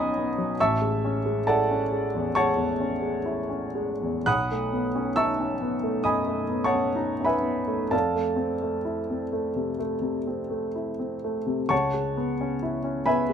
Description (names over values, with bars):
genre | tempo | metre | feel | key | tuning
classical, impressionist solo piano | 65 BPM | 4/4 | uneven beats, rubato | A major | A4 = 438 Hz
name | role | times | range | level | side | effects
clear grand piano | solo | 0.0-13.3 s | A1 to F#6 | -24 LUFS | equal | none
room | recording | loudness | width
light reverb | minimal, uncompressed stereo recording | -24 LUFS | side -8 dB against mid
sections
0.0-13.3 A section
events
none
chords
0.0 Badd9; 0.6 Amaj7; 4.3 B9; 7.9 Fmaj7; 11.7 C#m7